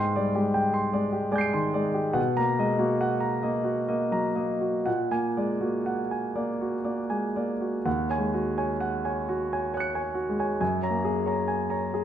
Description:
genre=classical, impressionist solo piano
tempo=57-79 BPM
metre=3/4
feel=rubato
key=Eb minor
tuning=A4 = 439 Hz
part: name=warm concert grand piano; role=solo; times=0.0-12.0 s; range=Eb2 to D7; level=-24 LUFS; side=equal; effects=none
room=wet recital hall reverb, RT60 1.2 s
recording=none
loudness=-24 LUFS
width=side -10 dB against mid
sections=0.0-7.9 A section; 7.9-12.0 B section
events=none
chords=0.0 Abmaj7#11; 2.2 Bmaj7; 4.9 Bbaug7; 7.9 Ebm7; 10.6 Gbadd9

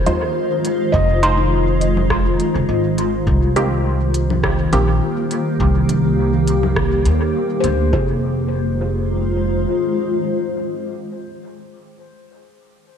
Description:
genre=ambient dub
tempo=103 BPM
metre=4/4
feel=swing 55% on 16ths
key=F minor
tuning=A4 = 442 Hz
part: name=granular cloud pad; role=sustained chords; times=0.0-11.0 s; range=Eb3 to C5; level=-20 LUFS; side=equal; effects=built-in reverb
part: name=upright bass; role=bass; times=0.0-9.6 s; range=F1 to Eb2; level=-18 LUFS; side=equal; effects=none
part: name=filtered dub chord stab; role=stabs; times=0.1-11.4 s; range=Eb3 to C5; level=-25 LUFS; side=right 2 dB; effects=phaser, dub echo
part: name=organic electronic drum kit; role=drums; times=0.1-7.8 s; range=congas, hi-hat, rim click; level=-27 LUFS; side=left 2 dB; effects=dub echo
part: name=handpan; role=arpeggios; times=0.9-3.5, 7.6-11.4 s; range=Ab3 to Eb5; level=-26 LUFS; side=left 3 dB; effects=dub echo
part: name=electronic kick drum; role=drums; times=0.9-8.1 s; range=none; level=-23 LUFS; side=equal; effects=overdrive
room=moderate lush hall reverb, RT60 2.1 s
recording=dreamy mix soaked in reverb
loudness=-15 LUFS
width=side -8 dB against mid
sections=0.0-7.9 A section; 7.9-10.3 B section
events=none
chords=0.0 Fm7; 3.3 Cm7; 7.9 Fm7

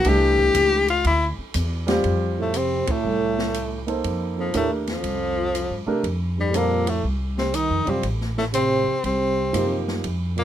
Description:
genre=modal jazz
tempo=120 BPM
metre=4/4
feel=swing 67% on 8ths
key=F mixolydian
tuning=A4 = 445 Hz
part: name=bright tenor saxophone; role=melody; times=0.0-10.4 s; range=F3 to G4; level=-22 LUFS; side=left 4 dB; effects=none
part: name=warm grand piano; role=accompaniment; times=0.0-10.0 s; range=E3 to C5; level=-24 LUFS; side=right 2 dB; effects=none
part: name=upright bass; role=bass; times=0.0-10.4 s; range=A1 to C3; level=-26 LUFS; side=equal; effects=none
part: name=open jazz drum kit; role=drums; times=0.0-10.4 s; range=hi-hat, kick drum, ride cymbal, snare drum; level=-32 LUFS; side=equal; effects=none
part: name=trombone with bucket mute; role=second line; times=2.4-10.4 s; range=F2 to Eb3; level=-26 LUFS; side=right 6 dB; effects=none
room=light reverb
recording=minimal, uncompressed stereo recording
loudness=-20 LUFS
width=side -11 dB against mid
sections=0.0-2.0 A section; 2.0-10.4 B section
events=tenor saxophone solo 0.0-2.0; band accent 2.8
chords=0.0 C; 2.0 F9

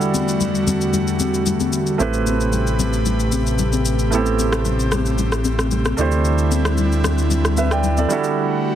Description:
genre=amapiano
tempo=113 BPM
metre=4/4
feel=straight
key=A dorian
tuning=A4 = 445 Hz
part: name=warm grand piano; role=accompaniment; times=0.0-8.8 s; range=G3 to G5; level=-23 LUFS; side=right 5 dB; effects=none
part: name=airy breathy pad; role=sustained chords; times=0.0-8.8 s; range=E2 to B4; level=-22 LUFS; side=equal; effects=chorus
part: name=electronic shaker and rim click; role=drums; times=0.0-8.4 s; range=none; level=-26 LUFS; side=left 1 dB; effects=none
part: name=congas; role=percussion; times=0.1-8.1 s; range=none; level=-26 LUFS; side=left 7 dB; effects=none
part: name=round analog bass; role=bass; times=2.0-8.1 s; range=A1 to D2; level=-20 LUFS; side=equal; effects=none
room=light reverb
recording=heavily compressed radio sound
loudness=-16 LUFS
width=side -10 dB against mid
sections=0.0-8.8 A section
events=kick muted 2.0-3.1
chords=0.0 Em11; 2.0 Am9; 6.0 D9sus4; 8.1 Em11

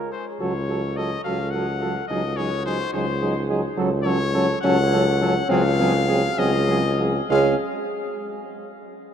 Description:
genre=classical, brass quintet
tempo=64-72 BPM (dotted quarters)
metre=6/8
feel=straight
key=Db major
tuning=A4 = 439 Hz
part: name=mellow flugelhorn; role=second line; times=0.0-7.6 s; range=Ab4 to Bb4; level=-28 LUFS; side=right 5 dB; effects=none
part: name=mellow French horn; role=accompaniment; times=0.0-7.6 s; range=C4 to Gb4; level=-28 LUFS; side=left 2 dB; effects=none
part: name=warm euphonium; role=accompaniment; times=0.0-7.6 s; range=Gb3 to Ab3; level=-28 LUFS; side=right 2 dB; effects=none
part: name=warm tuba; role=bass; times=0.0-7.5 s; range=Db2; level=-24 LUFS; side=equal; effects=none
part: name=clear trumpet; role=melody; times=0.1-7.6 s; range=C5 to Gb5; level=-27 LUFS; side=left 5 dB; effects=none
room=wet cathedral reverb, RT60 6.2 s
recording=in a vast, echoing space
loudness=-19 LUFS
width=side -8 dB against mid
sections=0.4-7.3 A section; 7.3-9.1 B section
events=slowing down 2.9-7.3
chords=0.4 Gbm/Db; 2.1 Ab7/Db; 3.8 Gbm/Db; 5.5 Ab7/Db; 7.3 Db5

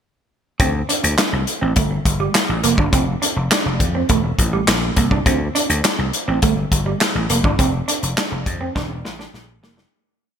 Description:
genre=early-eighties boogie funk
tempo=103 BPM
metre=4/4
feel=straight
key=D minor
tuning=A4 = 440 Hz
part: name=electric guitar at the edge of break-up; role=riff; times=0.6-9.9 s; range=G3 to D4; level=-23 LUFS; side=right 5 dB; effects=analog chorus
part: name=vintage slap bass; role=bass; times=0.6-9.8 s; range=E1 to F2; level=-20 LUFS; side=left 1 dB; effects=none
part: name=modern studio drum kit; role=drums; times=0.6-9.9 s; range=handclaps, hi-hat, kick drum, snare drum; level=-19 LUFS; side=left 1 dB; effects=none
room=light reverb, small room ambience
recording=bright 1980s-style digital production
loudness=-16 LUFS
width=side -8 dB against mid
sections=0.6-9.9 breakdown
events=fade-out 7.6-9.9; drum fill 8.8-9.9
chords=0.6 D5; 1.8 Gmadd9; 2.9 F5; 4.1 Em7b5; 5.3 D5; 6.4 Gmadd9; 7.6 F5; 8.8 Bbmaj7#11/E

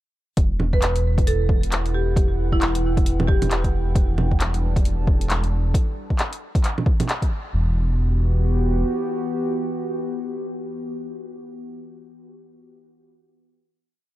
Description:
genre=future garage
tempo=134 BPM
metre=4/4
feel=swing 61% on 16ths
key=E minor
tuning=A4 = 440 Hz
part: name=warbly tape-like pad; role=sustained chords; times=1.1-11.7 s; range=E3 to A5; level=-29 LUFS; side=equal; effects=chorus, built-in reverb, sidechain pumping
part: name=dark detuned saw bass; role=bass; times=0.4-8.8 s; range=E1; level=-21 LUFS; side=equal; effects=sidechain pumping
part: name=deep house drum kit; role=drums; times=0.4-7.3 s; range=bongos, handclaps, hi-hat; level=-26 LUFS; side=right 1 dB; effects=none
part: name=electronic kick drum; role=drums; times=0.4-7.3 s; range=none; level=-20 LUFS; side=equal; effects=none
part: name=marimba with medium hard mallets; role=melody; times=0.7-3.7 s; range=E4 to B4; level=-28 LUFS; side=right 1 dB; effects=tape echo
room=digital ambience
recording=none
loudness=-19 LUFS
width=side -15 dB against mid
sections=0.4-7.5 groove; 7.5-11.1 final chord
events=band accent 7.1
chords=0.4 Emadd9; 4.0 Gsus2/E; 7.5 Emadd9

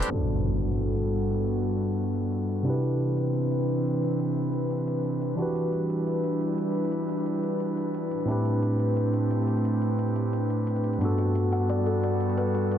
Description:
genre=liquid drum and bass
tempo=176 BPM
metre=4/4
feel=swing 54% on 16ths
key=G major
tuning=A4 = 439 Hz
part: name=barky tine electric piano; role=accompaniment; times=0.0-12.8 s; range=G2 to B5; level=-27 LUFS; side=equal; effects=vintage 12-bit sampler grit
part: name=airy breathy pad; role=sustained chords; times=0.0-12.8 s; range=E3 to B4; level=-29 LUFS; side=equal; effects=chorus
part: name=breakbeat sampler-style drum kit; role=drums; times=0.0-12.8 s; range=crash cymbal, hi-hat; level=-50 LUFS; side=left 3 dB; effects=none
part: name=impact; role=sound effects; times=0.1-1.5 s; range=none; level=-30 LUFS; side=equal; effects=none
part: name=kalimba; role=arpeggios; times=11.2-12.8 s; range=F#4 to F#5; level=-34 LUFS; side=left 3 dB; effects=dub echo
room=wet recital hall reverb, RT60 1.5 s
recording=dense, heavily limited modern master, low-pass filter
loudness=-24 LUFS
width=side -9 dB against mid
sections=0.1-12.8 A section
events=impact 0.1-1.5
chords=0.1 Gmaj9; 2.7 Cmaj9; 5.4 Em7; 8.3 Am11; 11.0 Gmaj9

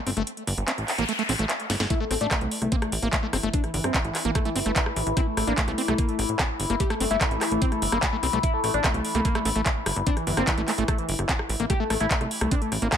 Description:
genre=psychedelic trance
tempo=147 BPM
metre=4/4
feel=straight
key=A phrygian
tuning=A4 = 438 Hz
part: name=overdriven acid bass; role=riff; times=0.1-13.0 s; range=A3 to C4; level=-31 LUFS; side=moving between left 7 dB and right 7 dB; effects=distortion, auto-pan, vintage 12-bit sampler grit, sidechain pumping, tape echo
part: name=plucky analog bass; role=bass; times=0.1-12.9 s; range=G1 to C2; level=-28 LUFS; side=equal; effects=none
part: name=drum and bass drum kit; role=drums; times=0.1-13.0 s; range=handclaps, hi-hat, rim click, snare drum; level=-28 LUFS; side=equal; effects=none
part: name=noise sweep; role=sound effects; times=0.5-1.9 s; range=none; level=-32 LUFS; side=left 2 dB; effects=none
part: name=overdriven synth lead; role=melody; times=1.9-12.7 s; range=E3 to G4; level=-30 LUFS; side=left 2 dB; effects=distortion, phaser, sidechain pumping, dub echo
part: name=overtone-sweeping drone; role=sustained chords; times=2.6-13.0 s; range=E3 to E4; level=-31 LUFS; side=left 3 dB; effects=chorus, built-in reverb, phaser, sidechain pumping
part: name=electronic kick drum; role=drums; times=1.9-13.0 s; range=none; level=-26 LUFS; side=equal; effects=none
room=light reverb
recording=none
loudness=-22 LUFS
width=side -8 dB against mid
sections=0.0-13.0 A section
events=kick drops out 0.3-1.9; noise sweep 0.5-1.9; drum fill 1.7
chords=0.0 A5

